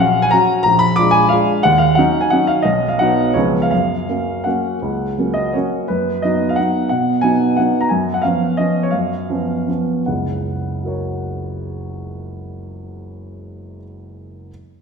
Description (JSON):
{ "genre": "classical, piano waltz", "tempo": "145-190 BPM", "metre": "3/4", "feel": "rubato", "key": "F# major", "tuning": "A4 = 440 Hz", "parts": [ { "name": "warm baby grand piano", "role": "solo", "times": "0.0-14.5 s", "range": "F#1 to D6", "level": "-15 LUFS", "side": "equal", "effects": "none" } ], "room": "wet scoring stage reverb, RT60 1.6 s", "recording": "recorded in a church or concert hall", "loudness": "-14 LUFS", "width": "side -5 dB against mid", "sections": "0.0-5.9 A section; 5.9-10.1 B section; 10.1-12.4 C section", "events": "slowing down 7.4-10.1", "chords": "0.0 F#/A#; 0.6 A#7; 1.6 D#m7; 2.7 B; 3.4 C#7; 3.7 F#; 5.9 B/F#; 7.9 C#7/F#; 10.1 F#" }